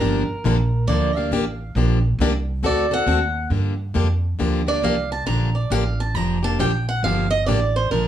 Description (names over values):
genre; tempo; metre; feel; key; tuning
acoustic string swing (jazz manouche); 137 BPM; 4/4; swing 64% on 8ths; G minor; A4 = 440 Hz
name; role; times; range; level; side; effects
picked swing-style acoustic guitar; melody; 0.0-8.1 s; Bb4 to Bb5; -24 LUFS; right 3 dB; none
picked plugged-in steel-string acoustic guitar; accompaniment; 0.0-8.1 s; D3 to A4; -23 LUFS; left 3 dB; none
upright bass; bass; 0.0-8.1 s; F1 to G2; -22 LUFS; right 1 dB; none
room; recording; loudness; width
moderate small room reverb, RT60 0.5 s; studio ambience; -18 LUFS; side -11 dB against mid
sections
0.0-3.5 A section; 3.5-8.1 A section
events
steel-string acoustic guitar solo 0.0-8.1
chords
0.0 Gm9; 2.6 D7b9; 3.5 Gm9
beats
| 0.01 0.45 0.88 1.32 | 1.76 2.20 2.64 3.08 | 3.52 3.96 4.40 4.83 | 5.28 5.71 6.15 6.59 | 7.03 7.47 7.91